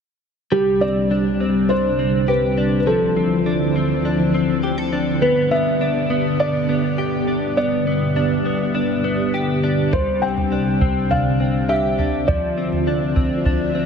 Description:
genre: dream pop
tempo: 102 BPM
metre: 4/4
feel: straight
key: C major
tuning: A4 = 440 Hz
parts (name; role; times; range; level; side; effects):
- felt-muted upright piano; melody; 0.5-13.9 s; G4 to G5; -22 LUFS; equal; tape echo
- string machine, cellos; sustained chords; 0.5-13.9 s; C2 to G5; -21 LUFS; right 1 dB; ensemble chorus
- direct-recorded clean electric guitar; arpeggios; 0.5-13.9 s; F3 to A4; -22 LUFS; left 2 dB; analog chorus, tape echo
- soft vintage rhythm box; drums; 9.9-13.6 s; kick drum, toms; -22 LUFS; right 1 dB; none
room: moderate huge ambient reverb, RT60 5.0 s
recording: none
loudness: -17 LUFS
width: side -6 dB against mid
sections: 0.5-13.9 A section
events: none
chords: 0.5 Csus2; 2.9 Dm7; 5.2 G; 9.9 Csus2; 12.3 Dm7

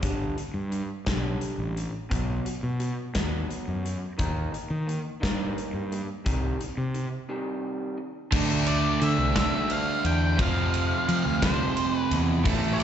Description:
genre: quiet-loud alternative rock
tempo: 58 BPM (dotted quarters)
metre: 6/8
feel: straight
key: unclear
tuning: A4 = 440 Hz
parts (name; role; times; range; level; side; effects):
- electric guitar through a small old amp; arpeggios; 0.0-8.3 s; G2 to Eb4; -34 LUFS; right 1 dB; slapback echo
- fuzz fingered electric bass; bass; 0.0-12.8 s; G1 to F3; -28 LUFS; equal; overdrive
- big rock drum kit; drums; 0.0-12.8 s; crash cymbal, hi-hat, kick drum, ride cymbal, snare drum; -30 LUFS; left 1 dB; none
- fuzz guitar; riff; 8.3-12.8 s; F2 to D4; -32 LUFS; left 12 dB; distortion, slapback echo
- overdriven electric guitar; riff; 8.3-12.8 s; F2 to D4; -28 LUFS; right 13 dB; phaser, slapback echo
- octave-fuzz lead guitar; melody; 8.7-12.8 s; C5 to G5; -29 LUFS; left 1 dB; distortion, slapback echo
room: light reverb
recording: live gig heard through the venue's PA, recital hall reverb, nothing above 8.0 kHz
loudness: -24 LUFS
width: side -9 dB against mid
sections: 0.0-8.3 A section; 8.3-12.8 B section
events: break 7.3-8.3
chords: 0.0 G; 2.1 B; 4.2 Eb; 6.3 Cm; 8.3 D5; 10.4 F5

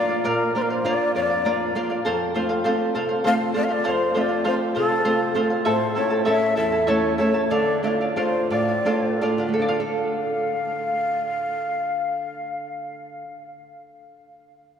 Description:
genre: andean folk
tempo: 53-67 BPM (dotted quarters)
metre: 6/8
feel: straight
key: D minor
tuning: A4 = 440 Hz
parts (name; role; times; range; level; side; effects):
- breathy mellow shakuhachi; melody; 0.0-13.4 s; A4 to F5; -24 LUFS; left 2 dB; none
- charango; accompaniment; 0.0-13.6 s; E4 to A5; -24 LUFS; equal; none
- nylon-string guitar; accompaniment; 0.0-13.7 s; E2 to A4; -26 LUFS; right 1 dB; none
room: wet cathedral reverb, RT60 5.4 s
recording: recorded in a church or concert hall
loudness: -20 LUFS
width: side -8 dB against mid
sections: 0.0-9.6 A section; 9.6-14.1 B section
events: slowing down 5.7-9.6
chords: 0.0 Bb; 2.1 F; 5.7 A; 7.5 Dm

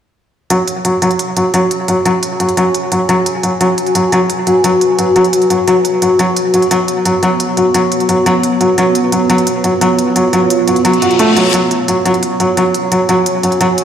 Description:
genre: dark technical drum and bass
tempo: 174 BPM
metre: 4/4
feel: straight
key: unclear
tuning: A4 = 439 Hz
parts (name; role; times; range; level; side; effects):
- deep dark ambient pad; sustained chords; 1.6-13.8 s; B3 to G#5; -15 LUFS; equal; chorus, built-in reverb
- felt-muted upright piano; arpeggios; 0.5-13.6 s; F#3 to F#4; -12 LUFS; equal; vintage 12-bit sampler grit, low-pass filter, tape echo
- electronic hi-hat; drums; 0.5-13.8 s; none; -21 LUFS; right 3 dB; small room ambience
- reverse cymbal; sound effects; 11.0-11.5 s; none; -19 LUFS; left 4 dB; none
room: wet lush hall reverb, RT60 2.2 s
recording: played on a big sound system in a bare room, stone room reverb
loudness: -10 LUFS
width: side -8 dB against mid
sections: 0.5-13.8 A section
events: reverse cymbal 11.0-11.5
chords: 0.5 F#5; 6.0 Bsus2; 11.5 F#5

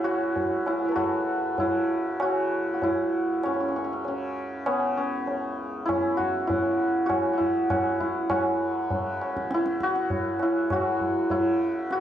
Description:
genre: indian classical, Hindustani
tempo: 99 BPM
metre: 4/4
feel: straight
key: C# raga malkauns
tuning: A4 = 442 Hz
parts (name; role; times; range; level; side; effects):
- santur; melody; 0.0-12.0 s; B3 to F#5; -25 LUFS; equal; none
- tanpura; drone; 0.0-12.0 s; C#2 to C#3; -39 LUFS; left 2 dB; cassette tape
- tabla; percussion; 0.1-12.0 s; none; -30 LUFS; equal; none
room: moderate small room ambience, RT60 0.5 s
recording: home recording on cassette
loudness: -24 LUFS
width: side -10 dB against mid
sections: 0.0-8.3 A section; 8.3-12.0 B section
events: speeding up 0.0-12.0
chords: none

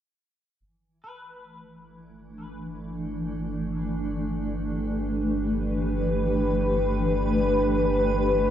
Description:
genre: ambient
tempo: free time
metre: none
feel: none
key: G major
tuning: A4 = 441 Hz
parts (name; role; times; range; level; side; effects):
- granular cloud pad; sustained chords; 2.3-8.5 s; E3 to B4; -25 LUFS; equal; built-in reverb
- round analog bass; bass; 0.6-8.5 s; G1; -31 LUFS; equal; none
- electric guitar at the edge of break-up; arpeggios; 1.0-4.2 s; B4; -50 LUFS; left 2 dB; analog chorus, tape echo
room: wet spring reverb, RT60 2.9 s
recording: echo-heavy mix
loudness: -23 LUFS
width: side -10 dB against mid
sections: 0.6-8.5 A section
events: fade-in on clean electric guitar 0.6-8.5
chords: 0.6 G69

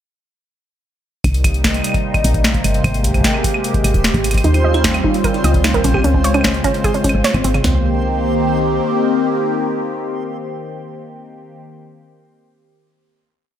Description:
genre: IDM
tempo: 150 BPM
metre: 4/4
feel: straight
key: C phrygian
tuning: A4 = 439 Hz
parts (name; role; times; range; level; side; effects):
- phased analog pad; sustained chords; 1.2-11.6 s; C3 to G4; -19 LUFS; left 1 dB; phaser, chorus, sidechain pumping
- woody FM bass; bass; 1.2-8.8 s; Eb1 to Eb2; -17 LUFS; equal; tube saturation
- booming analog drum machine; drums; 1.2-7.7 s; kick drum, snare drum, toms; -20 LUFS; equal; none
- booming analog drum machine; drums; 1.2-7.6 s; claves, hi-hat, snare drum; -20 LUFS; equal; none
- backwards swelling texture; texture; 1.7-7.7 s; C5; -29 LUFS; right 4 dB; built-in reverb
- warbly dusty pluck; arpeggios; 4.4-7.8 s; Db3 to Eb5; -19 LUFS; right 2 dB; chorus, tape echo
room: light reverb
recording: none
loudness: -14 LUFS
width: side -10 dB against mid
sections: 1.2-7.6 groove; 7.6-10.8 final chord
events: none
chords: 1.2 Cm7; 2.8 Abmaj9; 4.4 Eb13; 6.0 Dbmaj7; 7.6 Cm7

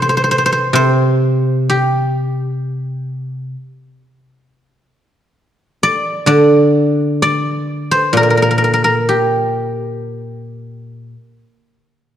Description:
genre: chinese traditional, Chinese solo plucked strings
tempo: 64 BPM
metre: 4/4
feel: rubato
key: unclear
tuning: A4 = 440 Hz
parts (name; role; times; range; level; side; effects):
- guzheng; solo; 0.0-11.4 s; Bb2 to D5; -13 LUFS; equal; none
room: moderate concert hall reverb, RT60 2.0 s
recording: dark, warm production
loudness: -12 LUFS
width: side -10 dB against mid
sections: 0.0-12.2 A section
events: none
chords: none

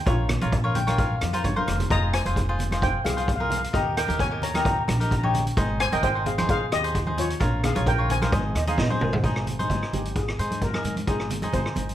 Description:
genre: calypso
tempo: 131 BPM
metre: 4/4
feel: swing 54% on 16ths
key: Ab major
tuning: A4 = 440 Hz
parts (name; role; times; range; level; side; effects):
- steel pan; melody; 0.1-11.9 s; F4 to Bb5; -28 LUFS; left 2 dB; none
- cavaquinho; accompaniment; 0.1-11.9 s; Eb4 to G5; -28 LUFS; left 1 dB; none
- upright bass; bass; 0.1-11.9 s; F1 to Ab2; -27 LUFS; equal; none
- street-band drum kit; drums; 0.1-11.9 s; hi-hat, kick drum, rim click, snare drum, toms; -27 LUFS; equal; none
- congas; percussion; 0.3-11.9 s; none; -32 LUFS; right 2 dB; none
- mellow hollow silver concert flute; second line; 8.6-9.2 s; C5 to F5; -32 LUFS; right 4 dB; none
room: light reverb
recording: none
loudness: -22 LUFS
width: side -12 dB against mid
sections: 0.0-9.2 A section; 9.2-11.9 B section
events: cavaquinho fill 0.5-1.9; drum fill 1.3-1.9, 8.7-9.2; steel pan solo 9.2-11.9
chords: 0.1 Bbm; 1.9 Fm; 3.7 Eb; 5.6 Abmaj7; 7.4 Bbm7; 8.3 Ab

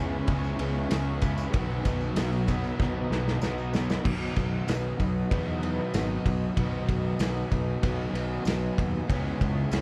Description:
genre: rock, shoegaze and dream pop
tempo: 95 BPM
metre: 4/4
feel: straight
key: B major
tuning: A4 = 440 Hz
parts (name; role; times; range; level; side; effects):
- ethereal airy pad; sustained chords; 0.0-9.8 s; B4 to D#6; -43 LUFS; equal; ensemble chorus, built-in reverb
- electric guitar through a small old amp; arpeggios; 0.0-9.8 s; F#3 to G#4; -42 LUFS; equal; none
- mellow electric guitar; riff; 0.0-9.8 s; B2 to G#4; -38 LUFS; equal; none
- overdriven semi-hollow guitar; riff; 0.0-9.8 s; B2 to B4; -37 LUFS; equal; subtle chorus
- overdriven semi-hollow guitar; riff; 0.0-9.8 s; B2 to C#4; -38 LUFS; equal; spring reverb
- fuzz fingered electric bass; bass; 0.0-9.8 s; G#1 to E2; -34 LUFS; equal; overdrive
- loose indie drum kit; drums; 0.3-9.8 s; crash cymbal, kick drum, ride cymbal, snare drum; -32 LUFS; equal; none
- tambourine; percussion; 0.4-9.8 s; none; -52 LUFS; equal; none
room: moderate small room ambience, RT60 0.5 s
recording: cassette tape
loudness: -28 LUFS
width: mono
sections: 0.0-4.1 A section; 4.1-9.8 B section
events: drum fill 2.8-4.1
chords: 0.0 C#m7; 1.5 B; 9.1 C#m7

